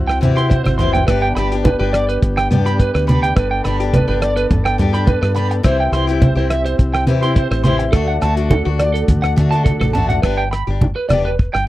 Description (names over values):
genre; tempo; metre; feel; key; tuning
highlife guitar band; 105 BPM; 4/4; swing 53% on 16ths; G major; A4 = 441 Hz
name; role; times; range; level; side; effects
combo organ; sustained chords; 0.0-10.2 s; A3 to A4; -24 LUFS; left 1 dB; none
deep dub fingered electric bass; bass; 0.0-11.7 s; E1 to D3; -19 LUFS; equal; none
electric guitar at the edge of break-up; arpeggios; 0.1-11.6 s; A4 to C6; -20 LUFS; right 3 dB; harmonic tremolo, slapback echo
cloth-damped thuddy drum kit; drums; 0.1-11.7 s; hi-hat, kick drum, rim click; -17 LUFS; equal; none
picked acoustic archtop guitar; accompaniment; 0.2-11.3 s; E3 to G4; -22 LUFS; left 6 dB; none
congas; percussion; 0.2-11.2 s; none; -19 LUFS; right 1 dB; none
room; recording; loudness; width
little or no reverb; dry, close 1970s-style studio recording; -13 LUFS; side -16 dB against mid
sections
0.0-10.2 A section; 10.2-11.7 B section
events
drum fill 0.5-1.1, 9.7-10.2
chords
0.0 C; 1.1 G; 5.7 C; 7.9 D; 10.2 G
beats
0.51 | 1.08 1.65 2.22 2.79 | 3.37 3.94 4.51 5.08 | 5.65 6.22 6.79 7.37 | 7.94 8.51 9.08 9.66 | 10.23 10.81 11.39